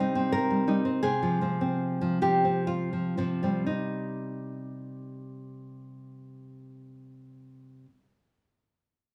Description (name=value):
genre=romantic piece for solo classical guitar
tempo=57-90 BPM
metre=3/4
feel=rubato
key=C minor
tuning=A4 = 440 Hz
part: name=nylon-string guitar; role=solo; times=0.0-8.3 s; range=C3 to C5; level=-30 LUFS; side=equal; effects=none
room=light reverb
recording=studio reverb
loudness=-28 LUFS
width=mono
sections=0.0-3.7 A section; 3.7-9.1 B section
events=slowing down 0.0-3.7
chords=0.0 Cm; 1.0 Fm/C; 3.7 Cm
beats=0.33 | 1.04 1.80 2.68 | 3.69 4.66 5.63 | 6.60 7.58